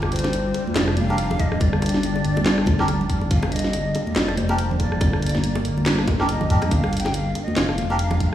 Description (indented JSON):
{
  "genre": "deep dubstep",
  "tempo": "141 BPM",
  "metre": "4/4",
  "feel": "swing 57% on 16ths, half-time",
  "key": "G minor",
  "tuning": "A4 = 438 Hz",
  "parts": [
    { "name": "deep dark ambient pad", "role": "sustained chords", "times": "0.0-8.3 s", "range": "G3 to D4", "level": "-28 LUFS", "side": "equal", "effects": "chorus, built-in reverb" },
    { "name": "dark detuned saw bass", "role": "bass", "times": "0.0-8.3 s", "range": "F1 to G2", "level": "-23 LUFS", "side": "equal", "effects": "none" },
    { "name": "garage drum kit", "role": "drums", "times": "0.0-8.3 s", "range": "handclaps, hi-hat, rim click, snare drum", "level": "-26 LUFS", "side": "equal", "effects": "small room reverb" },
    { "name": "bongos and congas", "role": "percussion", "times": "0.0-8.2 s", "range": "none", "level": "-29 LUFS", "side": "equal", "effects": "dub echo" },
    { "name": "breathy bright ney", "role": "melody", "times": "0.1-8.3 s", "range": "C5 to G5", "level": "-30 LUFS", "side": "left 1 dB", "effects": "dub echo" },
    { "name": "melodica", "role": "stabs", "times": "1.1-8.0 s", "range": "D4 to Bb4", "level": "-28 LUFS", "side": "right 1 dB", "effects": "dub echo" },
    { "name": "electronic kick drum", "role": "drums", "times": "1.4-8.3 s", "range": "none", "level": "-21 LUFS", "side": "equal", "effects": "small room reverb" }
  ],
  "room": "moderate echo chamber reverb, RT60 2.0 s, small room reverb",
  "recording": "played on a big sound system in a bare room, large studio reverb, small room ambience",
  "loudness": "-19 LUFS",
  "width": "side -12 dB against mid",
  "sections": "0.0-8.3 A section",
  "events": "none",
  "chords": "0.0 Gm",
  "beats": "0.33 0.76 1.18 | 1.61 2.03 2.46 2.88 | 3.31 3.74 4.16 4.59 | 5.01 5.44 5.86 6.29 | 6.71 7.14 7.57 7.99"
}